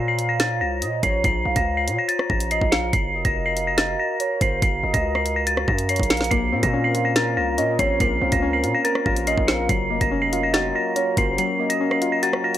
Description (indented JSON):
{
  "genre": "hip hop, drill",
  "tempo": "142 BPM",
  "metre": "4/4",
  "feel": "half-time",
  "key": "Bb harmonic minor",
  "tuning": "A4 = 444 Hz",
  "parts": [
    { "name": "dark detuned synth bell", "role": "melody", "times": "0.0-12.6 s", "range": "A6 to Db7", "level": "-24 LUFS", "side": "left 1 dB", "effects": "chorus, low-pass filter" },
    { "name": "warm velvety synth lead", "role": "second line", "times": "0.0-12.2 s", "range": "C5 to F5", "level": "-28 LUFS", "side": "right 1 dB", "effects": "chorus" },
    { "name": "glass harmonica", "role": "sustained chords", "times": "0.0-12.6 s", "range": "Db4 to Bb5", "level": "-29 LUFS", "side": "right 1 dB", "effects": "none" },
    { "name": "distorted 808-style bass", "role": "bass", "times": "0.0-11.4 s", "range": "F1 to Bb2", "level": "-26 LUFS", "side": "equal", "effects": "distortion" },
    { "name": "drill drum kit", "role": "drums", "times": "0.2-12.6 s", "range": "hi-hat, kick drum, rim click, snare drum", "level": "-24 LUFS", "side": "equal", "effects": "overdrive" },
    { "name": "soft electric-piano-like synth keys", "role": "accompaniment", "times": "6.3-12.6 s", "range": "Gb3 to Bb4", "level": "-24 LUFS", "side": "left 2 dB", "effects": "chorus, low-pass filter" }
  ],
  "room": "little or no reverb",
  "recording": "dry, gritty hardware recording",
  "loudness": "-19 LUFS",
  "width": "side -12 dB against mid",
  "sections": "0.0-12.6 A section",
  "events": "kick muted 11.4-12.6",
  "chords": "0.0 Bbmadd9; 2.9 Gbmaj7; 6.3 Bbmadd9; 9.7 Gbmaj7",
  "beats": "0.40 0.82 | 1.24 1.67 2.09 2.51 | 2.93 3.35 3.78 4.20 | 4.62 5.04 5.47 5.89 | 6.31 6.74 7.16 7.58 | 8.00 8.43 8.85 9.27 | 9.69 10.12 10.54 10.96 | 11.38 11.81 12.23"
}